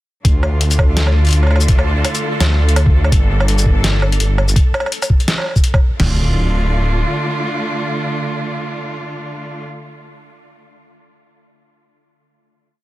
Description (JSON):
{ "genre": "half-time drum and bass", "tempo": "167 BPM", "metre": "4/4", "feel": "swing 56% on 16ths, half-time", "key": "D minor", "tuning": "A4 = 440 Hz", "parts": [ { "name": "clear chamber cello section", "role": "sustained chords", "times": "0.2-9.6 s", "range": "D3 to A4", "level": "-23 LUFS", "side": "right 1 dB", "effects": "sidechain pumping" }, { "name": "dark detuned saw bass", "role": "bass", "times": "0.2-7.0 s", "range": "D1 to D2", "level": "-14 LUFS", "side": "equal", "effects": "none" }, { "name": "boom bap sampler-style drum kit", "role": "drums", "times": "0.2-6.1 s", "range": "crash cymbal, kick drum, snare drum, toms", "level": "-14 LUFS", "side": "equal", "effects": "none" }, { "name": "boom bap sampler-style drum kit", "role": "drums", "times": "0.2-5.8 s", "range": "hi-hat, shaker, snare drum, woodblock", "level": "-19 LUFS", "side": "equal", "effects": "none" }, { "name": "pulsing gated texture", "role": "texture", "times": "0.6-6.0 s", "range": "A4", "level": "-28 LUFS", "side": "equal", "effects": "chorus, built-in reverb" } ], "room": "little or no reverb", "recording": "dense, heavily limited modern master", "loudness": "-13 LUFS", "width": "side -17 dB against mid", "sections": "0.2-6.0 drop; 6.0-8.9 final chord", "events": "drop 0.2-6.0", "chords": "0.2 Dm; 3.1 Gmadd9; 6.0 Dm" }